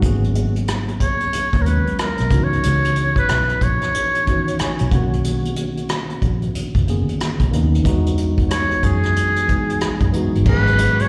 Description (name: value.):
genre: R&B, neo-soul.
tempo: 92 BPM.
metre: 4/4.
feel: swing 62% on 16ths.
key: G# minor.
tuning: A4 = 439 Hz.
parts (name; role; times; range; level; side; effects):
tine electric piano; accompaniment; 0.0-11.1 s; C#3 to G#5; -25 LUFS; equal; overdrive, slapback echo.
vintage muted fingered electric bass; bass; 0.0-11.0 s; F#1 to F#2; -22 LUFS; equal; none.
unplugged drum kit; drums; 0.0-11.1 s; crash cymbal, hi-hat, kick drum, rim click; -24 LUFS; equal; none.
trumpet with metal mute; melody; 1.0-11.1 s; G#4 to C#5; -23 LUFS; equal; slapback echo, tape echo.
tonewheel organ; sustained chords; 10.5-11.1 s; G#3 to F#4; -33 LUFS; equal; none.
room: light reverb.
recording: live gig heard through the venue's PA, recital hall reverb.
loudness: -19 LUFS.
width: mono.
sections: 0.0-10.5 A section.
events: tine electric piano fill 4.3-5.2.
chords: 0.0 G#m11; 2.3 C#m11; 4.9 Bmaj9; 7.9 Emaj9; 10.5 G#m11.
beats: | 0.03 0.68 1.33 1.98 | 2.63 3.29 3.94 4.59 | 5.24 5.89 6.55 7.20 | 7.85 8.50 9.16 9.81 | 10.46.